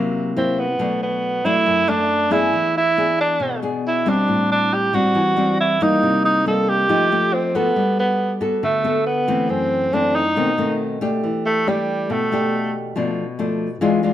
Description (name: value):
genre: bossa nova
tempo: 138 BPM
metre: 4/4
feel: straight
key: unclear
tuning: A4 = 441 Hz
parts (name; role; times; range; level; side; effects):
- nylon-string guitar; accompaniment; 0.0-14.1 s; F#2 to A4; -20 LUFS; left 2 dB; none
- warm tenor saxophone; melody; 0.4-12.8 s; G3 to A4; -18 LUFS; right 2 dB; none
room: moderate large studio reverb, RT60 1.1 s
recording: none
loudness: -17 LUFS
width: side -12 dB against mid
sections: 0.0-11.2 A section; 11.2-14.1 B section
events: tenor saxophone solo 11.2-14.1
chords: 0.0 C7#11; 0.8 Bm7; 2.5 E7; 4.3 Am7; 6.0 Cm7; 6.9 F9; 7.8 Gmaj9; 9.5 F#m7b5; 10.4 B7b9; 11.2 Em7; 13.0 Bm7b5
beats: 0.36 | 0.79 1.23 1.66 2.10 | 2.53 2.97 3.40 3.84 | 4.27 4.71 5.15 5.58 | 6.02 6.45 6.89 7.32 | 7.76 8.19 8.63 9.06 | 9.49 9.93 10.36 10.79 | 11.23 11.66 12.09 12.52 | 12.96 13.39 13.82